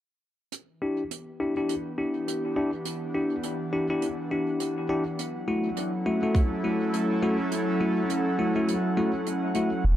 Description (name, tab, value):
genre	ambient dub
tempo	103 BPM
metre	4/4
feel	swing 58% on 16ths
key	E dorian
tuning	A4 = 436 Hz
part	airy breathy pad	sustained chords	1.1-10.0 s	E3 to F#5	-29 LUFS	right 1 dB	chorus
part	hi-hat	drums	0.5-9.7 s	none	-38 LUFS	right 7 dB	dub echo
part	bell-like tine electric piano	stabs	0.8-9.7 s	A3 to G4	-27 LUFS	left 1 dB	low-pass filter, dub echo
part	electronic kick drum	drums	6.3-6.5 s	none	-22 LUFS	right 1 dB	none
part	warm sub bass	bass	9.8-10.0 s	E1	-20 LUFS	equal	none
room	moderate spring reverb, RT60 2.3 s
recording	echo-heavy mix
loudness	-25 LUFS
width	side -12 dB against mid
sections	0.5-9.8 A section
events	fade-in on analog synth pad 0.5-9.8; kick drops out 8.7-9.8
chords	0.5 Em7; 5.2 F#m7